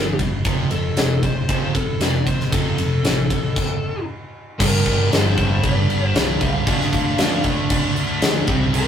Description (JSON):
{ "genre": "hard rock", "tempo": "116 BPM", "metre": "4/4", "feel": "straight", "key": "unclear", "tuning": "A4 = 440 Hz", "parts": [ { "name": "smooth overdriven lead guitar", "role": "melody", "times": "0.0-8.9 s", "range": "A4 to F5", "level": "-27 LUFS", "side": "left 1 dB", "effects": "none" }, { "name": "scooped high-gain guitar", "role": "riff", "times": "0.0-8.9 s", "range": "F2 to D4", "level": "-27 LUFS", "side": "left 5 dB", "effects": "distortion" }, { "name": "sludgy distorted guitar", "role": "riff", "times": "0.0-8.9 s", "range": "F2 to D4", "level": "-26 LUFS", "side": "right 4 dB", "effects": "overdrive" }, { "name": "overdriven picked electric bass", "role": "bass", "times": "0.0-8.9 s", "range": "F1 to F2", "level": "-25 LUFS", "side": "equal", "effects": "none" }, { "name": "huge arena drum kit", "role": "drums", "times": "0.2-8.9 s", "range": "crash cymbal, kick drum, ride cymbal, snare drum", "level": "-20 LUFS", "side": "equal", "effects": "none" }, { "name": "overdriven semi-hollow guitar", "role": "riff", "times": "4.6-8.9 s", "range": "G2 to D4", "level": "-26 LUFS", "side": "left 2 dB", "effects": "spring reverb" } ], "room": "moderate studio reverb, RT60 0.5 s", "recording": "rough rehearsal-room recording", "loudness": "-17 LUFS", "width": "side -8 dB against mid", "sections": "0.0-4.6 A section; 4.6-8.9 B section", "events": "stop 3.6-4.6", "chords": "0.4 F; 4.6 Gm; 6.7 Dm" }